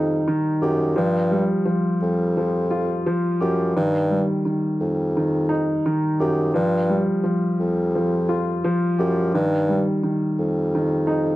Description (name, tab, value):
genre	hip hop, boom-bap hip-hop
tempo	86 BPM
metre	4/4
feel	swing 62% on 16ths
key	unclear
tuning	A4 = 439 Hz
part	dark concert grand piano	accompaniment	0.0-11.4 s	Eb3 to G4	-20 LUFS	equal	high-pass filter, low-pass filter
part	dark bassoon	bass	0.0-11.4 s	F2 to G2	-23 LUFS	equal	none
room	light reverb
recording	none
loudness	-19 LUFS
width	side -17 dB against mid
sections	0.0-11.4 A section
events	none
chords	0.0 Fsus2